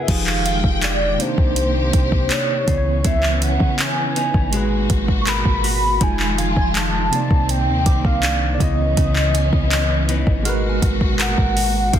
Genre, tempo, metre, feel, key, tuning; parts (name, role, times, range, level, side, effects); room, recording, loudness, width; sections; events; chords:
contemporary R&B; 81 BPM; 4/4; straight; A4 = 440 Hz
warm velvety synth lead; melody; 0.0-12.0 s; C5 to Db6; -23 LUFS; equal; chorus, digital delay
tine electric piano; accompaniment; 0.0-12.0 s; C3 to Ab5; -25 LUFS; right 4 dB; fast stereo tremolo
direct-recorded clean electric guitar; arpeggios; 0.0-12.0 s; C3 to Bb4; -28 LUFS; left 7 dB
warm studio string section; sustained chords; 0.1-12.0 s; Bb2 to G5; -27 LUFS; equal
clean 808-style bass; bass; 0.1-12.0 s; F1 to Db3; -22 LUFS; equal
smooth R&B drum kit; drums; 0.1-12.0 s; crash cymbal, handclaps, hi-hat, kick drum; -20 LUFS; equal
soft synth bell; texture; 0.5-1.5, 6.4-12.0 s; F5 to F6; -38 LUFS; right 2 dB
digital ambience; dense, heavily limited modern master; -16 LUFS; side -10 dB against mid
0.1-12.0 A section
0.1 Fm9; 1.2 Cm9; 2.7 Dbm9; 4.5 Abm9; 6.0 Fm7; 7.1 Cm9; 8.6 Dbm9; 10.5 Abm9